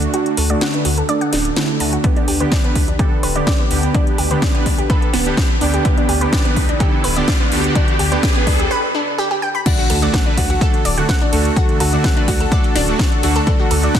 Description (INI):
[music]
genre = progressive house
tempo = 126 BPM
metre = 4/4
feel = straight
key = D major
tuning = A4 = 440 Hz
[part]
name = lush unison pad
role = sustained chords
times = 0.0-14.0 s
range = D3 to B4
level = -26 LUFS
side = equal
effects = chorus, sidechain pumping
[part]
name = soft supersaw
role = stabs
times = 0.0-14.0 s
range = D3 to B4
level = -22 LUFS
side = right 3 dB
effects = sidechain pumping, low-pass filter, tape echo
[part]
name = dark detuned saw bass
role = bass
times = 0.0-13.9 s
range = D1 to D2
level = -20 LUFS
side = left 1 dB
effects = sidechain pumping
[part]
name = house drum kit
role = drums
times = 0.0-14.0 s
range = crash cymbal, hi-hat, ride cymbal, snare drum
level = -23 LUFS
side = equal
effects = overdrive
[part]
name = analog pluck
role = arpeggios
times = 0.1-14.0 s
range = B3 to B5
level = -22 LUFS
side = equal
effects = chorus, sidechain pumping, tape echo
[part]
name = electronic kick drum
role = drums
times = 2.0-14.0 s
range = none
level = -16 LUFS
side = equal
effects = overdrive
[part]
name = riser and impact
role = sound effects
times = 4.3-11.6 s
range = none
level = -27 LUFS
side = left 1 dB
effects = none
[part]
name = clear concert grand piano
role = melody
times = 9.7-14.0 s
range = F#4 to A4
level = -25 LUFS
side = left 1 dB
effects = tape echo
[sound]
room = light reverb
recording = dense, heavily limited modern master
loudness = -14 LUFS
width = side -9 dB against mid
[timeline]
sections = 0.0-9.7 A section; 9.7-14.0 B section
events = build-up 0.0-9.7; filter sweep on synth pluck 0.0-9.7; filter sweep on supersaw synth 0.0-9.7; filter sweep on analog synth pad 0.0-9.7; riser 4.3-8.7; break 8.7-9.7; drop 9.7-14.0; impact 9.7-11.6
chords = 0.0 D; 2.0 G/D; 9.7 D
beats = | 0.14 0.61 1.09 1.56 | 2.04 2.52 2.99 3.47 | 3.95 4.42 4.90 5.37 | 5.85 6.33 6.80 7.28 | 7.75 8.23 8.71 9.18 | 9.66 10.14 10.61 11.09 | 11.56 12.04 12.52 12.99 | 13.47 13.95